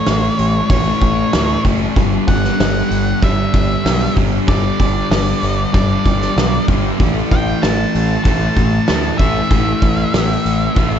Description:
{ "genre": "rock, shoegaze and dream pop", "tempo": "95 BPM", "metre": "4/4", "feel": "straight", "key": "A mixolydian", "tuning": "A4 = 439 Hz", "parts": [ { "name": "octave-fuzz lead guitar", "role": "melody", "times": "0.0-11.0 s", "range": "C#5 to A5", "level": "-22 LUFS", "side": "equal", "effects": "distortion, digital delay" }, { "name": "fuzz guitar", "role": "riff", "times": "0.0-11.0 s", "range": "G2 to A3", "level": "-18 LUFS", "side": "left 1 dB", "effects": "distortion, wide subtle chorus" }, { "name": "growling fingered electric bass", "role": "bass", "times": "0.1-11.0 s", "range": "F#1 to D2", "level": "-19 LUFS", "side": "equal", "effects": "overdrive" }, { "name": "loose indie drum kit", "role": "drums", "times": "0.1-10.9 s", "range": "hi-hat, kick drum, snare drum", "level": "-18 LUFS", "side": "equal", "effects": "none" } ], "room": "moderate small room reverb, RT60 0.5 s", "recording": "dark, warm production, nothing above 7.9 kHz", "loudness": "-13 LUFS", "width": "side -8 dB against mid", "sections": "0.0-11.0 A section", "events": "none", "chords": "0.0 A; 2.0 G5; 7.0 A5", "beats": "0.07 0.70 1.33 | 1.97 2.60 3.23 3.86 | 4.49 5.12 5.74 6.37 | 7.00 7.63 8.26 8.89 | 9.52 10.14 10.77" }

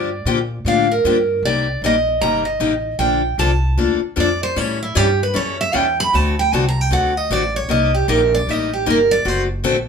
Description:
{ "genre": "acoustic string swing (jazz manouche)", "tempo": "153 BPM", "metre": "4/4", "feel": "swing 62% on 8ths", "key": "unclear", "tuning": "A4 = 440 Hz", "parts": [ { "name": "picked steel-string acoustic guitar", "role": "melody", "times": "0.0-9.4 s", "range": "E4 to B5", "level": "-18 LUFS", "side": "right 3 dB", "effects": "none" }, { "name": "picked steel-string acoustic guitar", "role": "accompaniment", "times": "0.0-9.8 s", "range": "C3 to A4", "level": "-20 LUFS", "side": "left 6 dB", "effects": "none" }, { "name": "upright bass", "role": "bass", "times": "0.0-9.9 s", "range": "F#1 to Bb2", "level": "-22 LUFS", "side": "equal", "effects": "none" } ], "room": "moderate club reverb, RT60 0.8 s", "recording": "minimal, uncompressed stereo recording", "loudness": "-15 LUFS", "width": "side -6 dB against mid", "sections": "0.0-1.4 A section; 1.4-9.9 A section", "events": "steel-string acoustic guitar solo 0.0-9.9", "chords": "0.0 Gm7; 1.4 Cm7; 3.0 Bbmaj7; 4.6 A7; 6.1 D7; 7.7 Cm7; 9.3 D7", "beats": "0.26 0.65 1.04 | 1.44 1.83 2.22 2.61 | 3.00 3.39 3.79 4.18 | 4.57 4.96 5.35 5.74 | 6.13 6.52 6.91 7.30 | 7.70 8.09 8.48 8.87 | 9.26 9.65" }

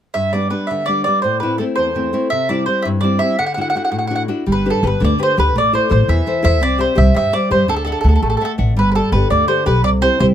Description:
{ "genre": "italian folk, Italian serenade", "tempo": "112 BPM (dotted quarters)", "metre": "6/8", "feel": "straight", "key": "G major", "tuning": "A4 = 440 Hz", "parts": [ { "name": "mandolin", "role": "melody", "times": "0.1-10.3 s", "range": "A4 to F#5", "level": "-18 LUFS", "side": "right 2 dB", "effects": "none" }, { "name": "nylon-string guitar", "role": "accompaniment", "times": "0.1-10.3 s", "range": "E2 to F#5", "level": "-19 LUFS", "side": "left 2 dB", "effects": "none" }, { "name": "upright bass", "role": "bass", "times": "4.5-10.3 s", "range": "G1 to G2", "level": "-16 LUFS", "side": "equal", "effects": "none" } ], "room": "little or no reverb", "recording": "close, detailed microphones", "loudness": "-14 LUFS", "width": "side -10 dB against mid", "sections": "0.1-4.5 A section; 4.5-10.3 B section", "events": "none", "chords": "0.1 G; 1.2 Am; 2.3 C; 3.4 Dadd9; 4.5 G; 5.5 Am; 6.6 C; 7.7 Dadd9; 8.8 Gsus2; 9.8 C", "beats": "| 0.14 0.69 | 1.24 1.78 | 2.31 2.85 | 3.39 3.93 | 4.47 5.01 | 5.55 6.08 | 6.62 7.15 | 7.69 8.23 | 8.77 9.31 | 9.84" }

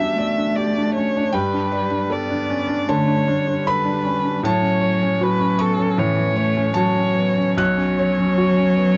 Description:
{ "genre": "neoclassical piano and strings", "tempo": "77 BPM", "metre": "4/4", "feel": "rubato", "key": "unclear", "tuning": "A4 = 440 Hz", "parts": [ { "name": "muted violin", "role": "melody", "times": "0.0-9.0 s", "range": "A4 to E5", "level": "-25 LUFS", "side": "equal", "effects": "none" }, { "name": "muted cello", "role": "second line", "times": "0.0-9.0 s", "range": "E3 to B3", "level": "-24 LUFS", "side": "equal", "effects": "none" }, { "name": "felt-muted upright piano", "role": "accompaniment", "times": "0.0-9.0 s", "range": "B1 to F#6", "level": "-24 LUFS", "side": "equal", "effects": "none" } ], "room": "wet booth ambience, RT60 0.2 s", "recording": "nothing above 7.8 kHz", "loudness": "-20 LUFS", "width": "mono", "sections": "0.0-9.0 A section", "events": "none", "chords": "0.0 Em7; 1.3 Gadd9; 4.4 F#m7/A; 7.6 Bsus2", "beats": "0.56 | 1.34 2.12 2.89 3.67 | 4.44 5.22 5.99 6.76 | 7.59 8.39" }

